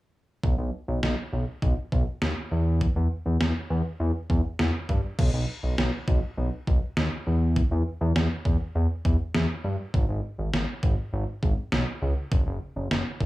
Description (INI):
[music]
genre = synth-pop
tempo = 101 BPM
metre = 4/4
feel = straight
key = B major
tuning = A4 = 439 Hz
[part]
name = fat analog bass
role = bass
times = 0.4-13.3 s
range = F#1 to G2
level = -25 LUFS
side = equal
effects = none
[part]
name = detuned 8-bit digital drum machine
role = drums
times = 0.4-13.3 s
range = crash cymbal, kick drum, snare drum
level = -26 LUFS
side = equal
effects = none
[sound]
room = little or no reverb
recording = small room ambience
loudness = -24 LUFS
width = side -18 dB against mid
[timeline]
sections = 0.4-5.2 A section; 5.2-13.3 B section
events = none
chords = none